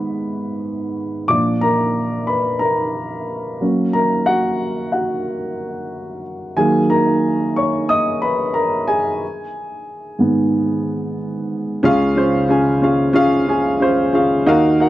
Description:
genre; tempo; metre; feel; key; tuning
pop; 91 BPM; 4/4; straight; unclear; A4 = 440 Hz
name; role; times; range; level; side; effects
dark upright piano; solo; 0.0-14.9 s; Db2 to Eb6; -16 LUFS; equal; none
room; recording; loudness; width
moderate plate reverb, RT60 2.6 s; dry, close 1970s-style studio recording; -16 LUFS; side -15 dB against mid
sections
0.0-11.9 A section; 11.9-14.9 B section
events
upright piano solo 0.0-11.9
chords
0.0 Abm; 1.3 Bb; 3.6 Gb; 6.6 Ebm; 9.2 Abm; 11.9 Db

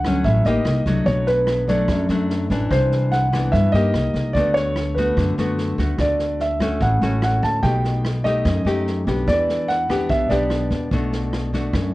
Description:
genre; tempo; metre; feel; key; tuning
bossa nova; 146 BPM; 4/4; straight; unclear; A4 = 440 Hz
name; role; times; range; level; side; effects
dark grand piano; melody; 0.0-11.9 s; B4 to A5; -22 LUFS; right 1 dB; none
nylon-string guitar; accompaniment; 0.0-11.9 s; F#2 to G4; -22 LUFS; left 2 dB; none
upright bass; bass; 0.0-11.9 s; A1 to G2; -23 LUFS; equal; none
open jazz drum kit; drums; 0.0-11.8 s; kick drum, rim click, snare drum; -29 LUFS; equal; none
room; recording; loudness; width
moderate studio reverb, RT60 0.5 s; worn, warbling old tape, cassette tape, warbly pitch drift; -17 LUFS; side -18 dB against mid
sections
0.0-11.9 A section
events
none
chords
0.0 Dmaj7; 0.6 Cm7; 1.1 Bm7; 2.7 Cmaj9; 3.9 Cm7; 4.3 Bm7/D; 6.0 Dmaj7; 7.6 B7b13; 9.3 Em7; 10.9 Bm7

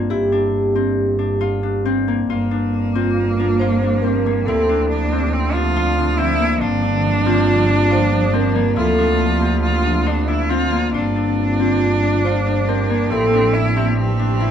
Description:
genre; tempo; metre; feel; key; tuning
contemporary instrumental, chamber music in an uneven meter; 139 BPM; 5/4; straight; G dorian; A4 = 444 Hz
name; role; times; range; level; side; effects
vibraphone with soft mallets; melody; 0.0-13.5 s; F4 to C5; -20 LUFS; right 1 dB; none
Celtic harp; arpeggios; 0.0-14.5 s; Bb3 to F4; -22 LUFS; left 4 dB; none
clear double bass; bass; 0.0-14.5 s; G1 to D2; -20 LUFS; right 2 dB; none
bright cello; second line; 2.3-14.5 s; Bb3 to F4; -21 LUFS; right 2 dB; none
granular cloud pad; sustained chords; 3.8-14.5 s; C3 to G4; -27 LUFS; left 1 dB; built-in reverb
room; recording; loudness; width
little or no reverb; dark, warm production; -15 LUFS; side -8 dB against mid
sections
0.0-2.3 A section; 2.3-14.5 B section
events
none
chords
0.0 Gm7; 4.5 Dm7; 6.6 Gm7; 8.8 Dm7; 10.9 Gm7; 13.1 Am7

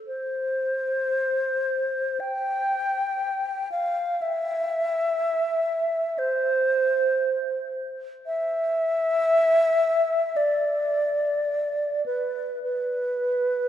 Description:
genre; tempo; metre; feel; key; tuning
classical, free, expressive piece for unaccompanied alto flute; 49-62 BPM; 4/4; rubato; C major; A4 = 440 Hz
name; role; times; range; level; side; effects
bright wooden-headed alto flute; solo; 0.1-13.7 s; B4 to G5; -22 LUFS; equal; none
room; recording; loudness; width
wet cathedral reverb, RT60 4.1 s; dark, warm production; -22 LUFS; side -10 dB against mid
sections
0.0-13.7 A section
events
none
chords
none

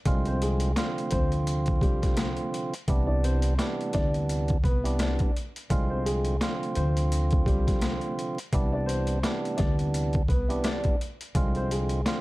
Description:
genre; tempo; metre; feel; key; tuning
hip hop, boom-bap hip-hop; 85 BPM; 4/4; swing 58% on 16ths; C major; A4 = 439 Hz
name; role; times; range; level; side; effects
percussive tonewheel organ; accompaniment; 0.1-12.2 s; C2 to F4; -31 LUFS; right 2 dB; overdrive, cassette tape, high-pass filter, low-pass filter
upright bass; bass; 0.1-12.0 s; C2 to D2; -27 LUFS; equal; none
boom bap sampler-style drum kit; drums; 0.1-12.2 s; hi-hat, kick drum, rim click, snare drum; -28 LUFS; equal; overdrive
dark upright piano; melody; 0.3-12.0 s; G3 to D5; -34 LUFS; left 2 dB; high-pass filter, low-pass filter
room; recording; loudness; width
little or no reverb; dark, warm production, vinyl crackle; -24 LUFS; side -19 dB against mid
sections
0.0-12.2 A section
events
none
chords
0.1 Fm6/C; 2.9 Cmaj9; 5.7 Fm6/C; 8.5 Cmaj9; 11.4 Fm6/C

